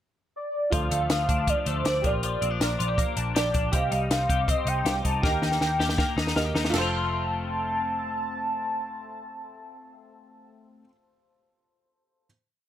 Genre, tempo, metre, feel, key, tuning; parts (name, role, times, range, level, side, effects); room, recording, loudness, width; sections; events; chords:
jangly indie pop; 160 BPM; 4/4; straight; F mixolydian; A4 = 440 Hz
warm velvety synth lead; melody; 0.4-10.5 s; C5 to A5; -29 LUFS; equal; chorus
warm upright piano; accompaniment; 0.7-12.3 s; F4 to F5; -36 LUFS; right 3 dB
twelve-string electric guitar; arpeggios; 0.7-10.9 s; F3 to G4; -32 LUFS; left 5 dB; ensemble chorus
vintage muted picked electric bass; bass; 0.7-10.8 s; F1 to Eb2; -30 LUFS; equal
compact cocktail drum kit; drums; 0.7-6.8 s; crash cymbal, hi-hat, kick drum, snare drum; -27 LUFS; equal
light reverb; -23 LUFS; side -11 dB against mid
0.0-0.7 pickup bar; 0.7-6.7 pre-chorus; 6.7-9.7 final chord
drum fill 5.2-6.7
0.0 N.C.; 0.7 Dm; 2.0 Bb6; 3.7 Cm; 5.2 Eb; 6.7 F